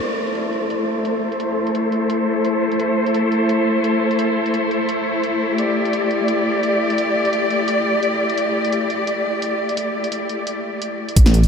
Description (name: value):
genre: half-time drum and bass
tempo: 172 BPM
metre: 4/4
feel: swing 54% on 16ths, half-time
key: A minor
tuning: A4 = 444 Hz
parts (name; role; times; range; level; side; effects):
- clear studio cello section; sustained chords; 0.0-11.1 s; A3 to D5; -18 LUFS; left 1 dB; sidechain pumping, low-pass filter
- drum and bass drum kit; drums; 0.0-11.5 s; crash cymbal, hi-hat, snare drum; -28 LUFS; equal; overdrive, low-pass filter on hats, low-pass filter on snare, low-pass filter on cymbals, low-pass filter on room
- deep soft wobble bass; bass; 11.2-11.5 s; A1; -14 LUFS; equal; chorus
- electronic kick drum; drums; 11.2 s; none; -12 LUFS; equal; overdrive
room: wet huge ambient reverb, RT60 7.6 s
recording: dreamy mix soaked in reverb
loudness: -17 LUFS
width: side -6 dB against mid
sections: 0.0-11.2 A section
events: filter sweep on cello section 0.0-11.2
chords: 0.0 Am